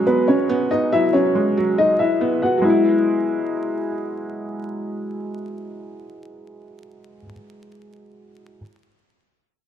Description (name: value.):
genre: hip hop.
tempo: 140 BPM.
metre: 4/4.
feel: half-time.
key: E major.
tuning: A4 = 440 Hz.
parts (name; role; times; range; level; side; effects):
dark grand piano; melody; 0.0-3.9 s; B3 to F#5; -19 LUFS; left 2 dB; low-pass filter, digital delay.
felt-muted upright piano; accompaniment; 0.0-8.6 s; F#3 to E4; -23 LUFS; right 2 dB; low-pass filter.
room: moderate plate reverb, RT60 1.3 s.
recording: bright 1980s-style digital production, vinyl crackle.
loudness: -18 LUFS.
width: side -9 dB against mid.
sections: 0.0-2.6 A section; 2.6-6.1 B section.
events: filter sweep 0.0-2.6.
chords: 0.0 Eadd9.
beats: 0.07 0.49 | 0.92 1.35 1.78 2.21 | 2.64 3.07 3.49 3.92 | 4.35 4.78 5.21 5.64.